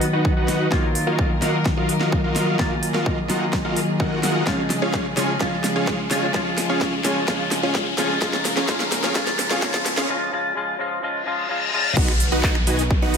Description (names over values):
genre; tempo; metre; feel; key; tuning
EDM, festival progressive house; 128 BPM; 4/4; straight; unclear; A4 = 440 Hz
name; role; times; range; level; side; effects
semi-hollow electric guitar; accompaniment; 0.0-12.0 s; Db3 to F5; -25 LUFS; left 1 dB; analog chorus, sidechain pumping, tape echo
dark chamber string section; sustained chords; 0.0-13.2 s; Db3 to D#5; -31 LUFS; equal; sidechain pumping
dense compressed supersaw; riff; 0.0-13.2 s; Db4 to Ab5; -24 LUFS; right 1 dB; sidechain pumping, low-pass filter, tape echo
pop drum kit; drums; 0.0-13.2 s; crash cymbal, finger snaps, handclaps, hi-hat, snare drum; -26 LUFS; equal; studio reverb
riser, reverse cymbal and downlifter; sound effects; 1.3-13.2 s; none; -29 LUFS; left 3 dB; none
electronic kick drum; drums; 0.2-13.0 s; none; -24 LUFS; equal; overdrive, studio reverb
wide detuned saw bass; bass; 12.0-13.2 s; B1; -25 LUFS; equal; chorus, sidechain pumping
room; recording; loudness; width
moderate digital room reverb, RT60 1.1 s, digital ambience; high-pass filter; -19 LUFS; side -6 dB against mid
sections
0.0-12.0 A section; 12.0-13.2 B section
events
build-up 0.0-12.0; drum fill 0.0-10.1; filter sweep 0.0-12.0; riser 1.3-10.1; reverse cymbal 11.3-12.0; drop 12.0-13.2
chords
0.0 B; 0.7 Ebmadd9; 4.5 Db; 8.2 Db6; 12.0 B